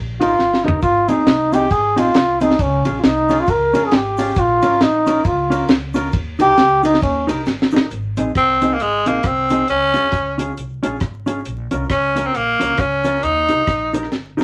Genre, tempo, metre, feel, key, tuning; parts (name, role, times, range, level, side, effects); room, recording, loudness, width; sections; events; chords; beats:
ska; 135 BPM; 4/4; swing 60% on 8ths; Ab major; A4 = 440 Hz
upright bass; bass; 0.0-14.4 s; G1 to F2; -29 LUFS; equal
bright trombone; melody; 0.2-7.3 s; Db4 to Bb4; -18 LUFS; equal
mellow electric guitar; accompaniment; 0.2-14.4 s; C4 to Bb4; -23 LUFS; equal
deep reggae drum kit; drums; 0.2-14.4 s; hi-hat, kick drum, ride cymbal, rim click, snare drum, toms; -21 LUFS; equal
cabasa; percussion; 0.8-14.4 s; -51 LUFS; equal
raspy tenor saxophone; melody; 8.4-13.9 s; Ab3 to Eb4; -18 LUFS; equal
moderate small room ambience, RT60 0.5 s; vinyl crackle; -17 LUFS; mono
0.0-7.9 A section; 7.9-14.4 B section
trombone solo 0.0-7.9; drum fill 0.4-0.8, 7.5-7.9, 14.1-14.4
0.0 Eb; 0.8 Ab; 2.6 Db; 4.4 Bbm; 6.1 Eb; 7.9 Ab; 9.7 Db; 11.5 Bbm; 13.2 Eb
0.38 | 0.83 1.27 1.71 2.15 | 2.60 3.04 3.48 3.92 | 4.37 4.81 5.25 5.70 | 6.14 6.58 7.02 7.47 | 7.91 8.35 8.80 9.24 | 9.68 10.13 10.57 11.01 | 11.46 11.90 12.34 12.79 | 13.23 13.67 14.12